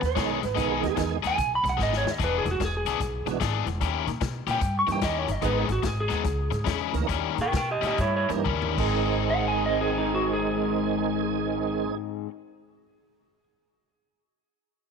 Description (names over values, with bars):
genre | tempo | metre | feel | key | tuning
electric blues shuffle | 119-148 BPM | 4/4 | swing 65% on 8ths | unclear | A4 = 443 Hz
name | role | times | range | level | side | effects
electric guitar through a small old amp | melody | 0.0-13.4 s | D#4 to C#6 | -28 LUFS | right 1 dB | none
cranked stack guitar | riff | 0.0-12.3 s | G#2 to G#4 | -30 LUFS | left 15 dB | overdrive, spring reverb
upright bass | bass | 0.0-11.9 s | E1 to B2 | -30 LUFS | equal | none
swinging big-band drum kit | drums | 0.0-8.9 s | crash cymbal, hi-hat, kick drum, snare drum, toms | -33 LUFS | left 3 dB | none
clean lap steel guitar | second line | 0.1-1.2, 8.8-11.9 s | G#4 to C#5 | -33 LUFS | right 13 dB | none
tonewheel organ | accompaniment | 0.2-12.0 s | D#3 to A#4 | -29 LUFS | right 14 dB | slow rotary speaker, overdrive, chorus vibrato
room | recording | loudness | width
small room reverb | 1960s-style stereo with parts hard left and right | -24 LUFS | side -6 dB against mid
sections
0.0-8.9 A section; 8.9-13.0 B section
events
drum fill 1.8-2.2, 8.5-8.9; slowing down 5.4-8.9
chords
0.0 G#m; 2.2 E7; 3.8 D#7b9; 5.4 G#m; 6.2 C#m; 7.1 D#7b9; 8.7 G#